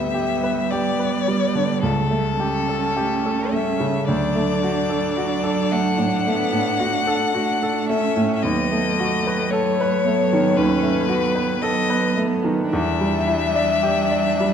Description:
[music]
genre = classical, slow romantic movement for piano quartet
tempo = 48-58 BPM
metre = 4/4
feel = rubato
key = D major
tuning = A4 = 440 Hz
[part]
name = rich violin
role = melody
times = 0.0-14.5 s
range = A4 to F#5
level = -23 LUFS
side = left 7 dB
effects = none
[part]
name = rich cello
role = second line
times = 0.0-14.5 s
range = F#3 to B3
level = -26 LUFS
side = right 8 dB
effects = none
[part]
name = bright grand piano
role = accompaniment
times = 0.0-14.5 s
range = C#2 to D5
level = -22 LUFS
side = equal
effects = none
[part]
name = rich viola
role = accompaniment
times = 0.0-14.5 s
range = A3 to D4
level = -26 LUFS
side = right 5 dB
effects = none
[sound]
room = wet recital hall reverb, RT60 1.6 s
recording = none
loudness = -18 LUFS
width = side -8 dB against mid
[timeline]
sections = 0.0-14.5 A section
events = none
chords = 0.0 Em7/D; 1.8 A7/C#; 4.1 D; 8.4 B7/D#; 12.7 Em7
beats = 0.71 1.83 2.98 | 4.09 5.17 6.26 7.35 | 8.43 9.51 10.57 11.62 | 12.71 13.81

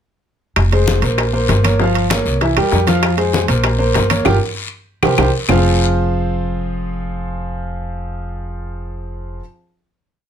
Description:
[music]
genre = latin, salsa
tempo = 195 BPM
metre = 4/4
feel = straight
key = F minor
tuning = A4 = 440 Hz
[part]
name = upright bass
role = bass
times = 0.6-9.4 s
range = F1 to F2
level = -19 LUFS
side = equal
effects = none
[part]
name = bongos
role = percussion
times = 0.6-5.6 s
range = none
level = -24 LUFS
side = left 8 dB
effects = none
[part]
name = claves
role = percussion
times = 0.6-5.6 s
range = none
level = -25 LUFS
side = left 9 dB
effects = none
[part]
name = congas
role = percussion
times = 0.6-5.6 s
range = none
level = -23 LUFS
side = left 2 dB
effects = none
[part]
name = guiro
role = percussion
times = 0.6-5.6 s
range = none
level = -27 LUFS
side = left 5 dB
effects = none
[part]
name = timbales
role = percussion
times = 0.6-5.6 s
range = none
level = -22 LUFS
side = right 10 dB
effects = none
[part]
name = warm concert grand piano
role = accompaniment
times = 0.7-9.4 s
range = E3 to F5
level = -18 LUFS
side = equal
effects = none
[sound]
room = light reverb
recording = close, detailed microphones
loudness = -14 LUFS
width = side -8 dB against mid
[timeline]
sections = 0.6-5.5 montuno (vamp); 5.5-8.0 final chord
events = drum fill 4.3-5.5; band accent 4.3-5.5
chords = 0.6 Fm; 1.2 Bbmadd9; 1.8 Gm7b5; 2.4 C7; 3.0 Fm; 3.6 Bbmadd9; 4.3 Gm7; 4.9 C5; 5.5 Fm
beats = | 0.56 0.87 1.18 1.49 | 1.79 2.10 2.41 2.72 | 3.03 3.34 3.65 3.95 | 4.26 4.57 4.88 5.19 | 5.50 5.80 6.11 6.42 | 6.72 7.03 7.34 7.64

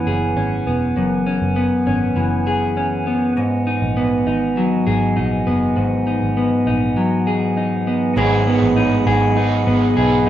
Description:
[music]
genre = dream pop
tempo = 100 BPM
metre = 4/4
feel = straight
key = unclear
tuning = A4 = 439 Hz
[part]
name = pipe organ, stopped flute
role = sustained chords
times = 0.0-10.3 s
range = E3 to B5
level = -25 LUFS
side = right 2 dB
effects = none
[part]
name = electric guitar at the edge of break-up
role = arpeggios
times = 0.0-10.3 s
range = F#2 to G#4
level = -17 LUFS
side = equal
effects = wide subtle chorus, digital delay
[part]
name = vintage muted picked electric bass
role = bass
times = 0.0-10.3 s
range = E1 to B1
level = -23 LUFS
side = right 1 dB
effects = none
[part]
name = crunchy overdriven guitar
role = accompaniment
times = 8.2-10.3 s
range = G#2 to B4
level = -23 LUFS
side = right 7 dB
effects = harmonic tremolo, wide subtle chorus
[part]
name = shimmering bell with halo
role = texture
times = 8.2-9.8 s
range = C#5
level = -34 LUFS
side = right 1 dB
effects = ensemble chorus, phaser, digital delay
[sound]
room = wet studio reverb, RT60 0.5 s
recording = rough home demo mix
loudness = -16 LUFS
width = side -12 dB against mid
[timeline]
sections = 0.0-8.2 A section; 8.2-10.3 B section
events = none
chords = 0.0 F#9sus4; 3.4 Emaj9; 8.2 G#m7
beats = 0.37 | 0.97 1.57 2.17 2.77 | 3.37 3.97 4.57 5.17 | 5.77 6.37 6.97 7.57 | 8.17 8.77 9.37 9.97

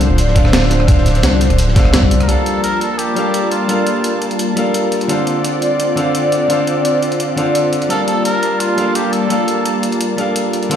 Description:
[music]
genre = liquid drum and bass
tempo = 171 BPM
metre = 4/4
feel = straight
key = G minor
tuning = A4 = 440 Hz
[part]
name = bright concert grand piano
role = accompaniment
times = 0.0-10.8 s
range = D3 to A5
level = -19 LUFS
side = left 1 dB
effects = ping-pong delay
[part]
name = lush unison pad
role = sustained chords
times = 0.0-10.8 s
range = F3 to A5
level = -17 LUFS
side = equal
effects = chorus, sidechain pumping
[part]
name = saturated sub bass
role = bass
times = 0.0-2.3 s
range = D1 to C2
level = -13 LUFS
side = equal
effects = tube saturation
[part]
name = breakbeat sampler-style drum kit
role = drums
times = 0.0-10.8 s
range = hi-hat, rim click, snare drum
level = -22 LUFS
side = equal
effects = studio reverb
[part]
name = crunchy breakbeat drum kit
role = drums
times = 0.0-2.2 s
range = hi-hat, snare drum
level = -26 LUFS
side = equal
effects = high-pass filter on hats, studio reverb, high-pass filter on snare, high-pass filter on room
[part]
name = electronic kick drum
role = drums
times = 0.4-2.1 s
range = none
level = -12 LUFS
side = equal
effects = studio reverb
[part]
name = trumpet with cup mute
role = melody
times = 2.2-4.2, 7.9-9.8 s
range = F4 to Bb4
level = -21 LUFS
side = right 1 dB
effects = ping-pong delay
[sound]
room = moderate digital room reverb, RT60 1.0 s, studio ambience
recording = played on a big sound system in a bare room, large studio reverb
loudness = -12 LUFS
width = side -9 dB against mid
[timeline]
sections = 0.0-2.3 A section; 2.3-10.8 B section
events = none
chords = 0.0 Dm7; 2.3 Gm9; 5.1 Dm7; 7.9 Gm9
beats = 0.18 0.53 | 0.88 1.24 1.59 1.94 | 2.29 2.64 2.99 3.34 | 3.69 4.04 4.39 4.74 | 5.09 5.45 5.80 6.15 | 6.50 6.85 7.20 7.55 | 7.90 8.25 8.60 8.96 | 9.31 9.66 10.01 10.36 | 10.71

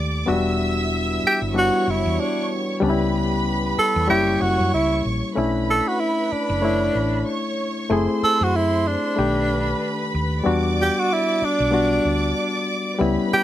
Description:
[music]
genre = soul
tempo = 94 BPM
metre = 4/4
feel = swing 58% on 16ths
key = B minor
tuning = A4 = 437 Hz
[part]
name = warm studio violin section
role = second line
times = 0.0-13.4 s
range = B4 to E6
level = -28 LUFS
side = right 1 dB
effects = none
[part]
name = barky reed electric piano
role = accompaniment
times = 0.0-13.4 s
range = D#3 to D5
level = -23 LUFS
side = left 3 dB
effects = overdrive
[part]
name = hollow-body short-scale fingered electric bass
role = bass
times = 0.0-13.4 s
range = E1 to F#2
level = -25 LUFS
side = right 1 dB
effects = tube saturation
[part]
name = mellow French horn section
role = sustained chords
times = 0.3-5.4 s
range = E3 to G4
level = -33 LUFS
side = right 2 dB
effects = stereo widening
[part]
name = breathy tenor saxophone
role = melody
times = 1.3-13.4 s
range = D4 to A4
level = -21 LUFS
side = right 2 dB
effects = none
[sound]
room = light reverb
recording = none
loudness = -18 LUFS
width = side -12 dB against mid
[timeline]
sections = 0.0-5.4 A section; 5.4-13.4 B section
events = tenor saxophone solo 0.0-5.4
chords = 0.3 Em9; 2.8 C#m7b5; 4.1 F#7b9; 5.4 Bm11; 7.9 F#m7b5; 9.2 B7alt; 10.4 Em9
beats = | 0.27 0.91 1.55 2.18 | 2.82 3.46 4.09 4.73 | 5.36 6.00 6.63 7.27 | 7.91 8.54 9.18 9.81 | 10.45 11.09 11.72 12.36 | 12.99

